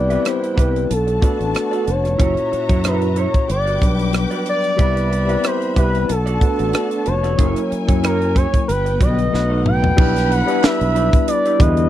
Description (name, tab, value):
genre	lush 1970s-style soul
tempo	92 BPM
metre	4/4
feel	swing 54% on 16ths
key	unclear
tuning	A4 = 436 Hz
part	expressive portamento lead	melody	0.0-11.9 s	A4 to G5	-21 LUFS	equal	chorus
part	warm studio string section	second line	0.0-11.6 s	B3 to D6	-28 LUFS	left 3 dB	none
part	overdriven tine electric piano	accompaniment	0.0-11.9 s	A#2 to C#5	-22 LUFS	left 2 dB	auto-pan
part	fingered electric bass	bass	0.0-11.9 s	E#1 to F#2	-20 LUFS	equal	none
part	electric guitar through a small old amp	riff	0.1-11.8 s	E4 to E5	-29 LUFS	right 6 dB	none
part	tight funk drum kit	drums	0.1-11.9 s	crash cymbal, hi-hat, kick drum, rim click, snare drum, toms	-17 LUFS	equal	none
part	group handclap	percussion	10.6-10.8 s	none	-32 LUFS	right 16 dB	none
room	little or no reverb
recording	dry, close 1970s-style studio recording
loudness	-15 LUFS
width	side -12 dB against mid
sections	0.0-10.0 A section; 10.0-11.9 B section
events	drum fill 9.3-10.0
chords	0.0 Cmaj7; 0.9 Bm7; 2.2 F#7; 3.5 Gmaj7; 4.8 Cmaj7; 6.1 Bm7; 7.4 F#7; 8.7 Gmaj7; 9.3 B7; 10.0 Em7/B